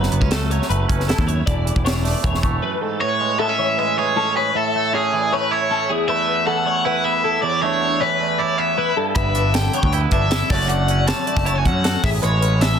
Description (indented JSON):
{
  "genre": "math rock and midwest emo",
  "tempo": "156 BPM",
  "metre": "4/4",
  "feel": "straight",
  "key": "A major",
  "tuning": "A4 = 440 Hz",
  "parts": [
    { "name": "twangy electric guitar", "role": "accompaniment", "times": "0.0-12.8 s", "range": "E2 to G#4", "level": "-24 LUFS", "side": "right 11 dB", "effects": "none" },
    { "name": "twelve-string electric guitar", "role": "arpeggios", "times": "0.0-12.8 s", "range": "D4 to E5", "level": "-25 LUFS", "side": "left 8 dB", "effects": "ensemble chorus, slapback echo" },
    { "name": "growling picked electric bass", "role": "bass", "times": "0.0-2.6, 9.2-12.8 s", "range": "E1 to F#2", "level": "-20 LUFS", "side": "equal", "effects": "overdrive" },
    { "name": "crisp fusion drum kit", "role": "drums", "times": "0.0-2.5, 9.2-12.7 s", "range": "hi-hat, kick drum, snare drum", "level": "-22 LUFS", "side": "equal", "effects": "none" },
    { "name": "overdriven electric guitar", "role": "melody", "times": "3.0-12.8 s", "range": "G#4 to A5", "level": "-20 LUFS", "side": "left 2 dB", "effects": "slapback echo" }
  ],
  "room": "small room reverb",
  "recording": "dense, heavily limited modern master",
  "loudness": "-17 LUFS",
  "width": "side -8 dB against mid",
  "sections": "0.0-3.0 A section; 3.0-12.8 B section",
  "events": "break 2.6-3.0",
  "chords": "0.0 F#m7; 1.5 E7sus4; 3.0 Amaj7; 5.9 Esus4; 9.0 G6; 10.5 Dmaj7/F#; 12.0 Amaj7"
}